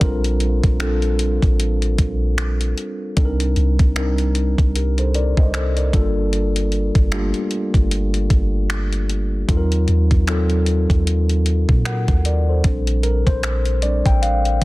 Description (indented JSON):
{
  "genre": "contemporary R&B",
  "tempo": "76 BPM",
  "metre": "4/4",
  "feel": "swing 58% on 16ths",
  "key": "Bb major",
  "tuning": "A4 = 442 Hz",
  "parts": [
    { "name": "mellow tine electric piano", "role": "accompaniment", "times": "0.0-14.6 s", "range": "Gb3 to G5", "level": "-22 LUFS", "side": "left 1 dB", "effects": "slow stereo tremolo" },
    { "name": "soft 808-style bass", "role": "bass", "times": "0.0-14.6 s", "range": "G1 to Bb2", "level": "-19 LUFS", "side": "equal", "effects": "none" },
    { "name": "crisp 8-bit digital drum machine", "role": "drums", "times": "0.0-14.6 s", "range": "finger snaps, hi-hat, kick drum", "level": "-19 LUFS", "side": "equal", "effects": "vintage 12-bit sampler grit, soft clipping on snare" }
  ],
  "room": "little or no reverb",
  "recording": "dense, heavily limited modern master",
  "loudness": "-16 LUFS",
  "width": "side -20 dB against mid",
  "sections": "0.0-12.6 A section; 12.6-14.6 B section",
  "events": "tine electric piano fill 11.5-12.6; tine electric piano solo 12.6-14.6",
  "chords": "0.0 Bb69; 3.2 Cm9; 5.9 Gm9; 9.5 Ebm6; 12.6 Bb69"
}